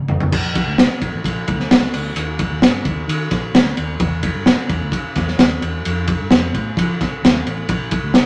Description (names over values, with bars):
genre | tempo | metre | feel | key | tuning
uptempo 1960s-style soul | 130 BPM | 4/4 | straight | Bb major | A4 = 437 Hz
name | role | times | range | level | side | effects
vintage muted fingered electric bass | bass | 0.0-8.2 s | A1 to F3 | -26 LUFS | equal | none
crunchy breakbeat drum kit | drums | 0.1-8.3 s | crash cymbal, hi-hat, kick drum, ride cymbal, snare drum, toms | -18 LUFS | equal | none
room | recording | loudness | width
moderate studio reverb, RT60 0.8 s | none | -18 LUFS | mono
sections
0.3-8.3 A section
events
drum fill 0.0-0.3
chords
none